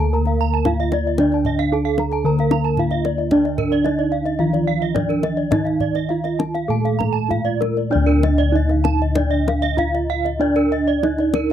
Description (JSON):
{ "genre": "Balinese gamelan", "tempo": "96-113 BPM", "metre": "4/4", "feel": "straight", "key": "D pelog", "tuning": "A4 = 440 Hz", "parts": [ { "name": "gamelan-type bronze metallophone", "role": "melody", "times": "0.0-11.5 s", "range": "D4 to Bb4-20c", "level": "-23 LUFS", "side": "right 4 dB", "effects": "none" }, { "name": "gamelan-type bronze metallophone", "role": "accompaniment", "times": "0.0-7.9 s", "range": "D3 to Bb3-20c", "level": "-27 LUFS", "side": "right 8 dB", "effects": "none" }, { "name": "gamelan-type bronze metallophone", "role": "arpeggios", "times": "0.0-11.4 s", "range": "Bb4-20c to Bb5-20c", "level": "-25 LUFS", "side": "left 6 dB", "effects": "none" }, { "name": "gamelan-type bossed gongs", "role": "bass", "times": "0.0-11.5 s", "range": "D2 to Bb4-20c", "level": "-20 LUFS", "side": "left 2 dB", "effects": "none" }, { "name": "kendang", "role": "percussion", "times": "0.3-11.5 s", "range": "none", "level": "-25 LUFS", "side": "left 3 dB", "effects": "none" }, { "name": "gamelan-type bronze metallophone", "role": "arpeggios", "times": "0.4-11.5 s", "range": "Bb4-20c to Bb5-20c", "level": "-25 LUFS", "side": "right 14 dB", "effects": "none" } ], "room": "light reverb", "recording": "dry, close 1970s-style studio recording", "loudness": "-16 LUFS", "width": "side -10 dB against mid", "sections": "0.0-7.9 A section; 7.9-11.5 B section", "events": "none", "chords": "none" }